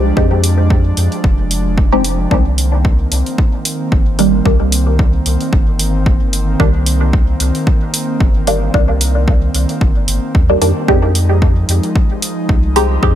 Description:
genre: dub techno.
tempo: 112 BPM.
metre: 4/4.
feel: swing 55% on 16ths.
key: C minor.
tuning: A4 = 440 Hz.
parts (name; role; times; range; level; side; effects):
airy breathy pad; sustained chords; 0.0-13.2 s; Eb3 to Eb4; -21 LUFS; equal; chorus, sidechain pumping.
filtered dub chord stab; stabs; 0.0-13.1 s; Eb3 to G4; -17 LUFS; right 1 dB; phaser, sidechain pumping, dub echo.
soft dub sub bass; bass; 0.0-13.2 s; F1 to F2; -15 LUFS; equal; sidechain pumping.
electronic kick drum; drums; 0.2-13.1 s; none; -13 LUFS; equal; overdrive, small room ambience.
electronic hi-hat; drums; 0.4-12.9 s; none; -19 LUFS; right 1 dB; overdrive, small room ambience.
room: little or no reverb.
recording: none.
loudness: -11 LUFS.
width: side -11 dB against mid.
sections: 0.0-13.2 A section.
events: none.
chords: 0.0 Fm7; 2.3 Cm7; 10.9 Fm7.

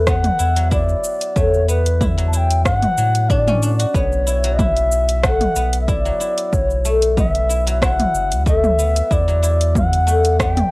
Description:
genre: organic downtempo.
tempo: 93 BPM.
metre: 4/4.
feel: swing 53% on 16ths.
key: B minor.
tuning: A4 = 441 Hz.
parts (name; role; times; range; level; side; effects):
bass bansuri; melody; 0.0-10.7 s; B4 to A5; -20 LUFS; equal; cassette tape, tape echo.
guzheng; arpeggios; 0.0-10.7 s; F#3 to F#4; -23 LUFS; left 2 dB; cassette tape, analog delay.
warm sub bass; bass; 0.0-10.6 s; F#1 to A2; -18 LUFS; equal; tube saturation.
deep house drum kit; drums; 0.1-10.7 s; hi-hat, rim click, shaker, toms; -22 LUFS; right 1 dB; overdrive.
electronic kick drum; drums; 0.1-10.5 s; none; -20 LUFS; equal; overdrive.
room: light reverb.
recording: home recording on cassette.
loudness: -14 LUFS.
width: side -22 dB against mid.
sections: 0.0-10.7 A section.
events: none.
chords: 0.0 E7sus2; 3.9 Bm9; 9.1 E7sus2.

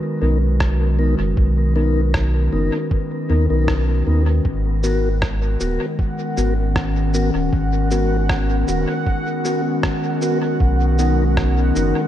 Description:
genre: ambient dub.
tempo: 78 BPM.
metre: 4/4.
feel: straight.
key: G# minor.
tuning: A4 = 440 Hz.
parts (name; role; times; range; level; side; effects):
warbly tape-like pad; sustained chords; 0.0-12.1 s; D#3 to B4; -22 LUFS; left 1 dB; chorus, built-in reverb.
mellow tonewheel organ; stabs; 0.2-12.0 s; B3 to A#4; -24 LUFS; left 3 dB; slow rotary speaker, dub echo.
soft dub sub bass; bass; 0.2-11.9 s; D#1 to D#2; -18 LUFS; equal; none.
electronic kick drum; drums; 0.6-11.5 s; none; -21 LUFS; equal; none.
electronic rim click and shaker; drums; 0.6-11.9 s; none; -29 LUFS; equal; dub echo.
bubbling stepped-filter texture; texture; 5.7-12.1 s; F#5; -29 LUFS; right 4 dB; chorus, built-in reverb.
room: light reverb, digital ambience.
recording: none.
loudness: -16 LUFS.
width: side -11 dB against mid.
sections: 0.0-12.1 A section.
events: none.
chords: 0.0 Bmaj7; 4.5 G#m9; 10.6 Bmaj7.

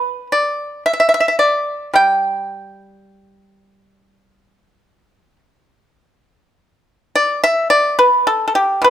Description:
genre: chinese traditional, Chinese solo plucked strings.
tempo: 50-55 BPM.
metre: 4/4.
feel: rubato.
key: G gong mode.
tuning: A4 = 440 Hz.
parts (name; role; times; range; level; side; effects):
pipa; solo; 0.0-8.9 s; B2 to G5; -13 LUFS; equal; none.
room: little or no reverb.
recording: close, detailed microphones.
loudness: -13 LUFS.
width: side -10 dB against mid.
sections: 0.0-6.6 A section; 6.6-8.9 B section.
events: none.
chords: none.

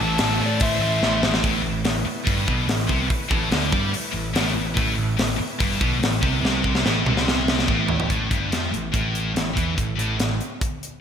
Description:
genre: hard rock.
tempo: 144 BPM.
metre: 4/4.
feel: straight.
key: A minor.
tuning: A4 = 437 Hz.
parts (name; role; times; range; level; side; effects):
dark smooth lead guitar; melody; 0.0-1.2 s; D5 to A5; -27 LUFS; left 3 dB; overdrive, slapback echo.
octave-fuzz lead guitar; second line; 0.0-1.2 s; A4 to E5; -33 LUFS; right 3 dB; distortion, slapback echo.
bright tonewheel organ; sustained chords; 0.0-8.1 s; A3 to C5; -36 LUFS; right 1 dB; none.
scooped high-gain guitar; riff; 0.0-10.3 s; G2 to A3; -27 LUFS; left 9 dB; distortion, slapback echo.
scooped high-gain guitar; riff; 0.0-10.4 s; G2 to A3; -30 LUFS; right 1 dB; distortion, slapback echo.
sludgy distorted guitar; riff; 0.0-10.4 s; G2 to A3; -29 LUFS; right 9 dB; overdrive.
overdriven picked electric bass; bass; 0.0-10.4 s; G1 to A2; -26 LUFS; equal; none.
tight metal drum kit; drums; 0.2-10.9 s; hi-hat, kick drum, snare drum, toms; -24 LUFS; equal; none.
room: moderate lush hall reverb, RT60 2.0 s.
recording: big arena sound.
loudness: -19 LUFS.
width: side -8 dB against mid.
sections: 0.0-1.4 A section; 1.4-8.1 B section; 8.1-11.0 C section.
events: drum fill 1.0-1.4, 6.4-8.1.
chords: 0.0 Am; 8.1 A5.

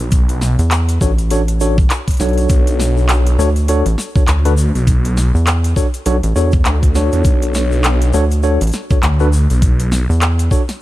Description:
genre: glitch hop.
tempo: 101 BPM.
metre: 4/4.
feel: swing 59% on 16ths.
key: B minor.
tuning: A4 = 440 Hz.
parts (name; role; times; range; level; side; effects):
phased detuned saw bass; bass; 0.0-10.1 s; B1 to E2; -14 LUFS; equal; phaser, tube saturation.
electronic kick drum; drums; 0.1-10.7 s; none; -14 LUFS; equal; none.
pop drum kit; drums; 0.1-10.8 s; handclaps, hi-hat, snare drum; -22 LUFS; equal; none.
tube shaker; percussion; 0.1-10.8 s; none; -31 LUFS; left 4 dB; none.
rubbery square bass; bass; 0.6-10.5 s; A1 to E2; -14 LUFS; equal; none.
tine electric piano; stabs; 1.0-10.6 s; D4 to C#5; -20 LUFS; left 1 dB; medium stereo tremolo, vintage 12-bit sampler grit, sidechain pumping, ping-pong delay.
room: little or no reverb.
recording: vinyl crackle, faint mains hum.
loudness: -12 LUFS.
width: side -16 dB against mid.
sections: 0.0-10.8 A section.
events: none.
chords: 0.0 Bm7.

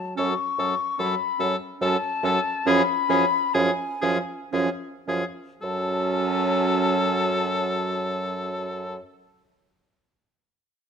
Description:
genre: classical, slow romantic movement for wind quintet.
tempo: 52-74 BPM.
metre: 3/4.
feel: rubato.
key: F# minor.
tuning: A4 = 439 Hz.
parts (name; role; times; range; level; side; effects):
mellow hollow silver concert flute; melody; 0.0-9.0 s; G#5 to C#6; -27 LUFS; left 6 dB; none.
clear French horn; accompaniment; 0.0-9.0 s; E#3 to F#3; -30 LUFS; right 1 dB; none.
clear oboe; second line; 0.2-9.0 s; G#4 to A4; -28 LUFS; left 3 dB; none.
warm clarinet; accompaniment; 0.2-9.0 s; C#4; -30 LUFS; right 8 dB; none.
warm bassoon; bass; 0.2-9.0 s; F#2; -28 LUFS; right 2 dB; none.
room: moderate recital hall reverb, RT60 1.4 s.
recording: close, detailed microphones.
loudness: -22 LUFS.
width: side -6 dB against mid.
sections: 0.2-5.6 A section; 5.6-8.7 B section.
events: slowing down 0.0-5.6.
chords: 0.2 F#m; 2.7 C#7/F#; 5.6 F#m.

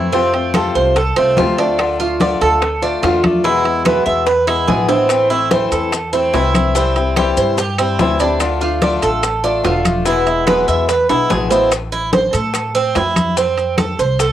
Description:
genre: latin, Cuban son and guajira.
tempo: 145 BPM.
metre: 4/4.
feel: straight.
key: A minor.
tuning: A4 = 441 Hz.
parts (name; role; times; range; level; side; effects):
picked swing-style acoustic guitar; accompaniment; 0.0-11.7 s; B2 to F4; -18 LUFS; left 6 dB; cassette tape.
Cuban tres; arpeggios; 0.0-14.3 s; C4 to E5; -16 LUFS; right 4 dB; cassette tape.
upright bass; bass; 0.0-14.3 s; E1 to A2; -22 LUFS; left 1 dB; none.
bongos; percussion; 0.1-14.3 s; none; -26 LUFS; left 8 dB; none.
congas; percussion; 0.1-14.3 s; none; -22 LUFS; left 1 dB; none.
timbales; percussion; 0.3-14.3 s; none; -23 LUFS; right 6 dB; none.
claves; percussion; 0.5-14.0 s; none; -30 LUFS; left 8 dB; none.
maracas; percussion; 5.1-14.3 s; none; -29 LUFS; left 7 dB; none.
room: moderate studio reverb, RT60 0.5 s.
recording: home recording on cassette.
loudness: -13 LUFS.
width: side -11 dB against mid.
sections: 0.0-11.7 A section; 11.7-14.3 A section.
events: drum fill 4.7-5.1, 11.1-11.7.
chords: 0.1 F; 1.8 Dm; 3.4 E; 5.1 Am; 6.8 C; 8.4 Dm; 10.1 E; 11.7 Am; 13.4 F.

